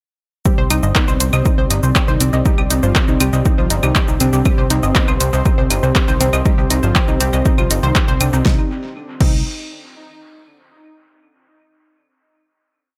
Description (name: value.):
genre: melodic techno.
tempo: 120 BPM.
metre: 4/4.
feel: straight.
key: C minor.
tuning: A4 = 440 Hz.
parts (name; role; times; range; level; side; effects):
soft supersaw; melody; 0.5-9.4 s; D3 to C5; -27 LUFS; equal; analog delay.
dark analog pad; sustained chords; 0.5-8.7 s; C4 to D5; -28 LUFS; equal; chorus, sidechain pumping.
analog pluck; arpeggios; 0.5-9.4 s; C4 to G6; -26 LUFS; equal; chorus, sidechain pumping, analog delay.
deep house drum kit; drums; 0.5-9.3 s; claves, crash cymbal, handclaps, hi-hat, shaker, snare drum; -23 LUFS; equal; overdrive, dub echo.
electronic kick drum; drums; 0.5-9.3 s; none; -18 LUFS; equal; overdrive.
plucky analog bass; bass; 0.6-9.4 s; G1 to C2; -20 LUFS; equal; sidechain pumping.
room: digital ambience.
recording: echo-heavy mix.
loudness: -15 LUFS.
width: mono.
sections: 0.5-8.5 drop; 8.5-10.5 final chord.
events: drop 0.5-8.5.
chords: 0.5 Cm; 8.5 C5.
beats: | 0.46 0.95 1.46 1.96 | 2.46 2.96 3.46 3.96 | 4.46 4.96 5.46 5.96 | 6.46 6.96 7.46 7.96 | 8.46 8.96.